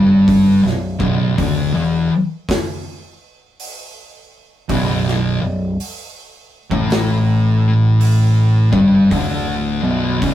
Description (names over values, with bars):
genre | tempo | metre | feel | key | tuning
stoner and doom metal | 54 BPM | 4/4 | swing 65% on 8ths | B minor | A4 = 439 Hz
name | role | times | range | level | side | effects
thick fuzz guitar | riff | 0.0-10.3 s | B1 to A3 | -14 LUFS | left 1 dB | distortion
thick fuzz guitar | riff | 0.0-10.3 s | B1 to A3 | -22 LUFS | right 4 dB | distortion
growling picked electric bass | bass | 0.0-10.3 s | B0 to A1 | -24 LUFS | right 1 dB | overdrive
big rock drum kit | drums | 0.3-10.3 s | hi-hat, kick drum, snare drum | -23 LUFS | equal | none
room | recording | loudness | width
wet small room reverb, RT60 0.5 s | rough rehearsal-room recording | -13 LUFS | side -12 dB against mid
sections
0.0-10.3 A section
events
none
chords
0.0 Bm